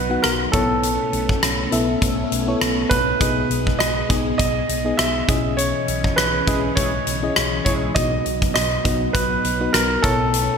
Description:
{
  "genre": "1980s-style pop",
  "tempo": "101 BPM",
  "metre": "4/4",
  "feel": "swing 55% on 16ths",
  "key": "unclear",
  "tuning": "A4 = 440 Hz",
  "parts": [
    { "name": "warm concert grand piano", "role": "melody", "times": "0.0-10.6 s", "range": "A4 to E5", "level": "-23 LUFS", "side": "right 3 dB", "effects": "ping-pong delay" },
    { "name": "FM electric piano with auto-pan", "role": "accompaniment", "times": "0.0-10.6 s", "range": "B2 to F#5", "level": "-24 LUFS", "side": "left 3 dB", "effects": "none" },
    { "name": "string machine, full ensemble", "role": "sustained chords", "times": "0.0-10.6 s", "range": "E3 to D#4", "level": "-28 LUFS", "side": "equal", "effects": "ensemble chorus" },
    { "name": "fingered electric bass", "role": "bass", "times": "0.0-10.5 s", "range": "B1", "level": "-28 LUFS", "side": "equal", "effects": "none" },
    { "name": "huge arena drum kit", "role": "drums", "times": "0.2-10.5 s", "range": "hi-hat, kick drum, rim click", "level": "-22 LUFS", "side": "left 1 dB", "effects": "gated reverb" },
    { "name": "analog synth brass", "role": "stabs", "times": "6.5-7.9 s", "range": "G#3 to G#4", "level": "-32 LUFS", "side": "equal", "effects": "chorus, ping-pong delay" }
  ],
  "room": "moderate lush hall reverb, RT60 1.9 s, small room reverb",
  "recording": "bright 1980s-style digital production",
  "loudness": "-17 LUFS",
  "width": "side -6 dB against mid",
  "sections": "0.0-10.6 A section",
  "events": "band accent 5.6-8.0",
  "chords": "0.0 B; 0.5 Aadd9/B; 3.2 G#m/B; 5.3 C#madd9/B; 8.0 B; 10.0 Aadd9/B",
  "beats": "0.24 | 0.83 1.43 2.02 2.61 | 3.21 3.80 4.40 4.99 | 5.58 6.18 6.77 7.37 | 7.96 8.55 9.15 9.74 | 10.34"
}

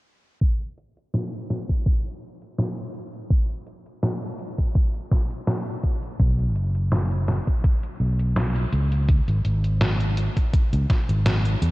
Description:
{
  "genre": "vaporwave",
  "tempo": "83 BPM",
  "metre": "4/4",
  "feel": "swing 54% on 16ths",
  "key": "C# minor",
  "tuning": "A4 = 440 Hz",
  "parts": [
    { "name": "detuned 8-bit digital drum machine", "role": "drums", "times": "0.4-11.7 s", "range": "hi-hat, snare drum", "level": "-27 LUFS", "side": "equal", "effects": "studio reverb" },
    { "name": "electronic kick drum", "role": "drums", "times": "0.4-11.1 s", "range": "none", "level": "-20 LUFS", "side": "equal", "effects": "studio reverb" },
    { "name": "fretless electric bass", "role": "bass", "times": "6.2-11.7 s", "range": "F#1 to E2", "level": "-21 LUFS", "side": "equal", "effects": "none" }
  ],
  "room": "light reverb, digital ambience",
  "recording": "cassette tape, low-pass filter",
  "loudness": "-21 LUFS",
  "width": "side -20 dB against mid",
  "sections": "0.4-11.7 A section",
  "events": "filter sweep 0.4-11.7; kick drops out 11.3-11.7",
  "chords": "none",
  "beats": "| 0.41 1.14 1.86 2.58 | 3.31 4.03 4.75 5.47 | 6.20 6.92 7.64 8.37 | 9.09 9.81 10.53 11.26"
}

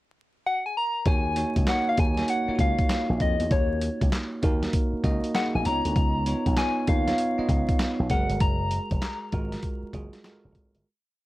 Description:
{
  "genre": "R&B, new jack swing",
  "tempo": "98 BPM",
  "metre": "4/4",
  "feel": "swing 65% on 16ths",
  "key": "Eb minor",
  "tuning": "A4 = 440 Hz",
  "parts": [
    { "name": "soft struck synth lead", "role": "melody", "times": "0.5-10.2 s", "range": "Db5 to Bb5", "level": "-28 LUFS", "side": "left 2 dB", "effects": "chorus, slapback echo" },
    { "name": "bell-like tine electric piano", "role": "accompaniment", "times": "1.1-10.9 s", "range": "Ab3 to Eb5", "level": "-29 LUFS", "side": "right 2 dB", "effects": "none" },
    { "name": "slap bass with an envelope filter", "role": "bass", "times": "1.1-10.8 s", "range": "F1 to F2", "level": "-28 LUFS", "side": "equal", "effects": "none" },
    { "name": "dusty soul sampler-style drum kit", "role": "drums", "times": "1.1-10.8 s", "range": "handclaps, hi-hat, kick drum, snare drum", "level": "-26 LUFS", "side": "equal", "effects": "none" }
  ],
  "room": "light reverb",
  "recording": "vinyl crackle",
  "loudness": "-23 LUFS",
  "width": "side -17 dB against mid",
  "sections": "0.0-1.1 pickup bar; 1.1-10.9 verse",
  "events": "fade-out 8.4-10.9",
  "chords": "0.0 N.C.; 1.1 Ebm7; 5.7 Db9; 8.1 Gbmaj9",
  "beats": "0.45 | 1.06 1.67 2.28 2.90 | 3.51 4.12 4.73 5.34 | 5.96 6.57 7.18 7.79 | 8.41 9.02 9.63 10.24"
}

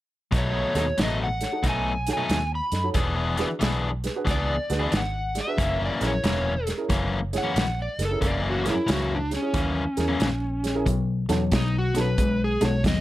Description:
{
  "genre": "electric blues shuffle",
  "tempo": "91 BPM",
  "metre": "4/4",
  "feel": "swing 65% on 8ths",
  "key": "unclear",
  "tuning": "A4 = 441 Hz",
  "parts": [
    { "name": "crunchy overdriven guitar", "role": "riff", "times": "0.3-13.0 s", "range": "F#2 to G#4", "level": "-27 LUFS", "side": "left 3 dB", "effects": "none" },
    { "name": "vintage muted fingered electric bass", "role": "bass", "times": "0.3-13.0 s", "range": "E1 to F#2", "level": "-28 LUFS", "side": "equal", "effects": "none" },
    { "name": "warm soul drum kit", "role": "drums", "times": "0.3-13.0 s", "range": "hi-hat, kick drum, snare drum", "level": "-27 LUFS", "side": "equal", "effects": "none" },
    { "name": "overdriven slide guitar", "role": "melody", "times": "0.4-13.0 s", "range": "C#4 to B5", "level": "-28 LUFS", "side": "equal", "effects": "none" },
    { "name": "dark baby grand piano", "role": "accompaniment", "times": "0.8-12.7 s", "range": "C#4 to D#5", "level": "-30 LUFS", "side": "right 4 dB", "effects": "none" }
  ],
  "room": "light reverb",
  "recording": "none",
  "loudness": "-22 LUFS",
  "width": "side -15 dB against mid",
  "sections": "0.3-10.9 A section; 10.9-13.0 B section",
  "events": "none",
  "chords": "0.3 B7; 3.0 E7; 5.6 F#7; 10.9 B7",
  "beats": "| 0.33 0.98 1.64 2.30 | 2.96 3.62 4.27 4.93 | 5.59 6.25 6.91 7.57 | 8.23 8.89 9.55 10.21 | 10.87 11.53 12.19 12.85"
}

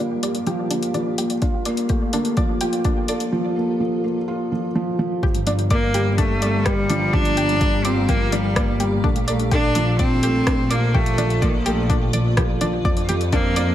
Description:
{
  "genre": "piano and strings electronica",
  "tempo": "126 BPM",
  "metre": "4/4",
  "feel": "straight",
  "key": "G minor",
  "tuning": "A4 = 445 Hz",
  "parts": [
    { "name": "granular cloud pad", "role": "sustained chords", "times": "0.0-13.7 s", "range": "G3 to Bb5", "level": "-31 LUFS", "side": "equal", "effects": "built-in reverb, sidechain pumping" },
    { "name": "analog pluck", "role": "arpeggios", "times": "0.0-13.6 s", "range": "D4 to D5", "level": "-28 LUFS", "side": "left 1 dB", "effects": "chorus, sidechain pumping, digital delay" },
    { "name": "felt-muted upright piano", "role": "riff", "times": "0.0-13.7 s", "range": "F3 to A4", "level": "-23 LUFS", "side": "right 1 dB", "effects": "digital delay" },
    { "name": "deep house drum kit", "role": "drums", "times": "0.2-13.7 s", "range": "hi-hat, rim click", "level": "-28 LUFS", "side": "left 1 dB", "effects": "overdrive" },
    { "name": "electronic kick drum", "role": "drums", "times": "1.4-13.4 s", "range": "none", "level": "-22 LUFS", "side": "equal", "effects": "overdrive" },
    { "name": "clear symphonic double bass section", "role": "bass", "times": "5.2-13.7 s", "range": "G1 to F2", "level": "-23 LUFS", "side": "equal", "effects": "sidechain pumping" },
    { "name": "bright cello", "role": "melody", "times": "5.7-13.7 s", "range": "Eb3 to D4", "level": "-22 LUFS", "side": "equal", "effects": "none" }
  ],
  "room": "moderate echo chamber reverb, RT60 1.7 s, digital ambience",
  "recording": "none",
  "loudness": "-18 LUFS",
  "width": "side -12 dB against mid",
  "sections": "0.0-5.2 A section; 5.2-13.7 B section",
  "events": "build-up 0.0-5.2; filter sweep on synth arpeggio sound 0.0-5.2; drop 5.2-13.7",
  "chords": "0.0 Gm7; 1.4 Bbmaj7; 5.2 Gm7; 9.0 Bbmaj7; 12.8 Fsus4",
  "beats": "0.47 0.94 | 1.42 1.90 2.37 2.85 | 3.33 3.80 4.28 4.75 | 5.23 5.71 6.18 6.66 | 7.13 7.61 8.09 8.56 | 9.04 9.52 9.99 10.47 | 10.95 11.42 11.90 12.37 | 12.85 13.33"
}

